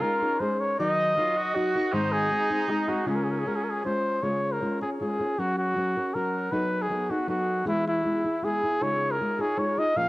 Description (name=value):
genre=mexican folk, mariachi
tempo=158 BPM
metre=3/4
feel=straight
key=Db major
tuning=A4 = 440 Hz
part: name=mellow trumpet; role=melody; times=0.0-10.1 s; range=Eb4 to F5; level=-26 LUFS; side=equal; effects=cassette tape, tape echo
part: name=clear trumpet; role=second line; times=0.0-4.0 s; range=Db4 to Gb4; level=-32 LUFS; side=right 3 dB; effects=cassette tape
part: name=nylon-string guitar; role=accompaniment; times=0.0-10.1 s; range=Ab2 to Bb4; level=-29 LUFS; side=left 1 dB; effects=cassette tape
room=wet spring reverb, RT60 1.1 s, small room ambience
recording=home recording on cassette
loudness=-24 LUFS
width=side -18 dB against mid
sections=0.0-4.2 A section; 4.2-10.1 B section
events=none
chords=0.0 Dbsus2; 0.8 Ebm; 1.9 Ab; 3.1 Db; 5.4 Gb; 6.5 Cb7/Gb; 7.7 E; 8.8 Dbadd9